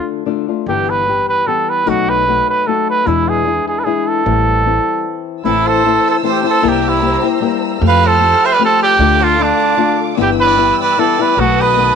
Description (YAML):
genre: mexican folk, mariachi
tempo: 151 BPM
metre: 3/4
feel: straight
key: A minor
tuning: A4 = 440 Hz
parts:
  - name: warm trumpet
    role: melody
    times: 0.0-12.0 s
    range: D4 to C5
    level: -14 LUFS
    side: right 3 dB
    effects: none
  - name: flamenco guitar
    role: accompaniment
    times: 0.0-12.0 s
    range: E2 to G4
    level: -17 LUFS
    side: left 13 dB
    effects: none
  - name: upright bass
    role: bass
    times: 0.7-11.9 s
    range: G1 to F2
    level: -19 LUFS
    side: right 2 dB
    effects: none
  - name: dark symphonic violin section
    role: sustained chords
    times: 5.4-12.0 s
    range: A4 to F6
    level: -23 LUFS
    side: right 1 dB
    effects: none
  - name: bright violin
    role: second line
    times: 5.5-12.0 s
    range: F4 to F5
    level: -21 LUFS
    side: right 15 dB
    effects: none
room: light reverb, studio reverb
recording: 1960s-style stereo with parts hard left and right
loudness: -11 LUFS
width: side -6 dB against mid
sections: 0.0-5.4 A section; 5.4-12.0 A section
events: stop 5.0-5.4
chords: 0.0 Dm; 0.7 G6; 1.9 B7; 3.1 E7; 4.2 Am7; 5.4 Am; 6.6 C7; 7.8 Fadd9; 9.0 Dm; 10.2 G6; 11.4 B7